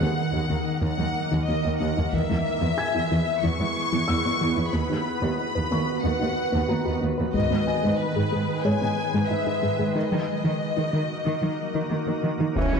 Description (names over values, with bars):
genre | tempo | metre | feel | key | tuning
cinematic, hybrid orchestral and electronic film score | 92 BPM | 4/4 | straight | unclear | A4 = 440 Hz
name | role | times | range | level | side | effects
clear symphonic violin section | melody | 0.0-12.2 s | B4 to C#6 | -29 LUFS | left 5 dB | none
organ-like drone | sustained chords | 0.0-12.8 s | D#3 to D#5 | -29 LUFS | right 2 dB | ensemble chorus, built-in reverb
soft round pluck | arpeggios | 0.0-12.8 s | D#3 to B4 | -30 LUFS | left 4 dB | chorus, ping-pong delay
rich symphonic cello section | bass | 0.0-12.8 s | D#2 to C#4 | -26 LUFS | right 2 dB | none
felt-muted upright piano | texture | 0.0-12.8 s | C#5 to G#6 | -36 LUFS | left 2 dB | ping-pong delay
taiko ensemble | drums | 2.1-3.4, 7.3-8.6, 12.6-12.8 s | none | -32 LUFS | equal | none
clear symphonic viola section | accompaniment | 12.6-12.8 s | E3 | -29 LUFS | equal | none
phased detuned saw bass | bass | 12.6-12.8 s | E1 | -26 LUFS | left 1 dB | phaser
room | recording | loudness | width
wet scoring stage reverb, RT60 2.0 s | dark, warm production | -22 LUFS | side -6 dB against mid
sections
0.0-12.6 A section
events
none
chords
0.0 D#m; 2.1 E; 4.7 B/D#; 7.3 G#m; 10.0 D#m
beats
0.17 0.82 1.47 | 2.13 2.78 3.43 4.08 | 4.74 5.39 6.04 6.69 | 7.34 8.00 8.65 9.30 | 9.95 10.61 11.26 11.91 | 12.56